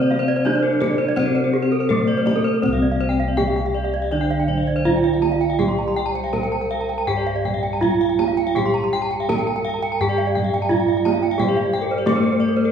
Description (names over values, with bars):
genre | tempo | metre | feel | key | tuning
Balinese gamelan | 82 BPM | 4/4 | uneven beats | C slendro | A4 = 440 Hz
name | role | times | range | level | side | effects
gamelan-type bronze metallophone | melody | 0.0-12.7 s | Bb3-45c to Bb4-45c | -21 LUFS | right 1 dB | none
low xiao | second line | 0.0-12.7 s | C5 to Bb5+27c | -30 LUFS | right 3 dB | none
gamelan-type bronze metallophone | accompaniment | 0.0-12.7 s | C3 to G3+25c | -30 LUFS | left 1 dB | none
gamelan-type bronze metallophone | arpeggios | 0.0-12.7 s | Bb4-45c to C6 | -26 LUFS | left 4 dB | none
gamelan-type bossed gongs | bass | 0.0-12.7 s | C2 to G4+25c | -27 LUFS | left 1 dB | none
gamelan-type bronze metallophone | arpeggios | 0.1-12.6 s | G4+25c to C6 | -26 LUFS | right 4 dB | none
kendang | percussion | 0.1-12.6 s | none | -27 LUFS | right 2 dB | none
room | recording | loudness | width
wet recital hall reverb, RT60 1.7 s | heard from further back in the room, small room ambience | -17 LUFS | side -7 dB against mid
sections
0.0-2.6 A section; 2.6-12.7 B section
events
none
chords
none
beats
0.46 1.17 1.90 | 2.63 3.37 4.11 4.85 | 5.59 6.33 7.08 7.82 | 8.56 9.29 10.01 10.71 | 11.39 12.07